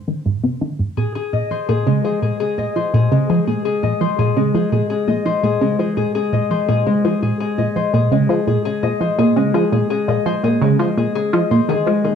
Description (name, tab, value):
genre	ambient, sequencer-driven space music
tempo	84 BPM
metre	4/4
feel	straight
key	unclear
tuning	A4 = 440 Hz
part	tight sequenced synth	riff	0.1-12.1 s	Ab2 to F3	-18 LUFS	right 1 dB	chorus, phaser, cassette tape, ping-pong delay
part	Celtic harp	arpeggios	1.0-12.2 s	Ab3 to Eb5	-19 LUFS	left 4 dB	auto-pan, cassette tape, plate reverb, ping-pong delay
room	wet small room reverb, RT60 0.5 s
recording	home recording on cassette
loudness	-15 LUFS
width	side -7 dB against mid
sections	0.0-12.2 A section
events	filter sweep on synth arpeggio sound 0.0-12.2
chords	0.0 Ab; 1.0 Bb5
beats	0.26 | 0.97 1.69 2.40 3.12 | 3.83 4.54 5.26 5.97 | 6.69 7.40 8.12 8.83 | 9.54 10.26 10.97 11.69